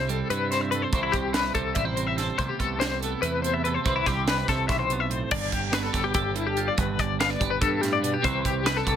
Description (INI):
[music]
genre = math rock and midwest emo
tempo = 287 BPM (eighths)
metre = 7/8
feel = straight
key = C major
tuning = A4 = 443 Hz
[part]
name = twelve-string electric guitar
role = accompaniment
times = 0.0-9.0 s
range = G2 to B4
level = -30 LUFS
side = right 8 dB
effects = analog chorus
[part]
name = twelve-string electric guitar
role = arpeggios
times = 0.0-9.0 s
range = E4 to F5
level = -27 LUFS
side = left 7 dB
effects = tremolo
[part]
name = growling picked electric bass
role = bass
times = 0.0-9.0 s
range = G1 to G2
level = -30 LUFS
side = right 1 dB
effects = overdrive
[part]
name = crisp fusion drum kit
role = drums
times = 0.1-9.0 s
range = crash cymbal, hi-hat, kick drum, snare drum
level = -29 LUFS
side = right 2 dB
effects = none
[sound]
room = light reverb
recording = none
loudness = -23 LUFS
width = side -9 dB against mid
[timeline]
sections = 0.0-5.3 A section; 5.3-9.0 B section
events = none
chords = 0.0 C6; 2.4 Am9/C; 3.9 Cmaj7; 5.3 G7; 8.2 Cmaj7